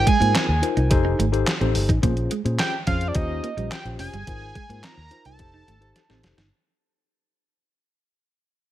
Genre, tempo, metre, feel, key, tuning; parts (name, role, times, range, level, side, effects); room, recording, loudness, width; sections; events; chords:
early-eighties boogie funk; 107 BPM; 4/4; straight; A4 = 440 Hz
fat analog lead; melody; 0.0-6.2 s; D5 to Bb5; -27 LUFS; right 4 dB; phaser, tape echo
tine electric piano; accompaniment; 0.0-6.4 s; Db4 to C5; -28 LUFS; left 5 dB; medium stereo tremolo
vintage muted fingered electric bass; bass; 0.0-6.5 s; F1 to Bb2; -24 LUFS; equal
electric guitar at the edge of break-up; riff; 0.1-6.5 s; G3 to Eb4; -29 LUFS; right 6 dB; lush chorus
detuned 8-bit digital drum machine; drums; 0.1-6.5 s; handclaps, hi-hat, kick drum, snare drum; -24 LUFS; equal; gated reverb
little or no reverb; -19 LUFS; side -13 dB against mid
0.0-6.5 A section
fade-out 0.0-6.5; drum fill 6.0-6.5
0.0 Ab6; 0.9 F7; 2.0 Bbm9; 3.2 Eb13; 4.3 Ab6; 5.4 F7